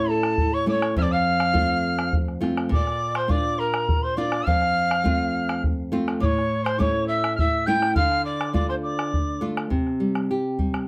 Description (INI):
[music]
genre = andean folk, Andean ensemble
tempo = 69 BPM (dotted quarters)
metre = 6/8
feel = straight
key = unclear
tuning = A4 = 440 Hz
[part]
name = reedy pan flute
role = melody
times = 0.0-9.4 s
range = A4 to G5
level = -28 LUFS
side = equal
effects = plate reverb
[part]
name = bright reedy quena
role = second line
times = 0.0-9.4 s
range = A5 to G6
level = -30 LUFS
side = equal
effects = none
[part]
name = nylon-string guitar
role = accompaniment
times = 0.0-10.9 s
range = F2 to G4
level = -28 LUFS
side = equal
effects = none
[part]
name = bombo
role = percussion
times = 0.2-10.9 s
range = none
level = -28 LUFS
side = equal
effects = none
[sound]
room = light reverb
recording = none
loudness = -23 LUFS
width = mono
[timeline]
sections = 0.0-9.7 A section; 9.7-10.9 B section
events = none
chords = 0.0 A; 1.0 F; 2.7 Bb; 4.5 F; 6.2 A; 8.0 Dm; 9.7 C5